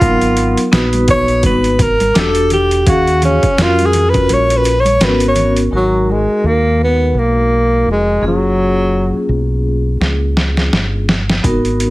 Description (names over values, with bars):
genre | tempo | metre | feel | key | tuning
hip hop, jazz-hop | 84 BPM | 4/4 | swing 57% on 16ths | G# dorian | A4 = 440 Hz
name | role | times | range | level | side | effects
breathy alto saxophone | melody | 0.0-9.3 s | F#3 to C#5 | -14 LUFS | equal | none
vibraphone with soft mallets | accompaniment | 0.0-11.9 s | F#3 to E#5 | -18 LUFS | left 1 dB | none
deep dub fingered electric bass | bass | 0.0-11.9 s | E1 to E#2 | -17 LUFS | equal | none
boom bap sampler-style drum kit | drums | 0.0-5.7, 10.0-11.9 s | hi-hat, kick drum, snare drum | -16 LUFS | equal | overdrive
tube shaker and congas | percussion | 0.0-5.7 s | none | -26 LUFS | right 2 dB | none
room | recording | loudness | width
moderate studio reverb, RT60 0.7 s | heavily compressed radio sound, multiband compression | -11 LUFS | side -18 dB against mid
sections
0.0-5.7 A section; 5.7-11.9 B section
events
alto saxophone solo 0.0-5.7; kick muted 4.3-5.7; drum fill 10.0-11.4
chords
0.0 G#m9; 2.2 Em11; 2.9 D#m11; 5.0 G#m11; 5.7 G#m9; 8.2 F#maj9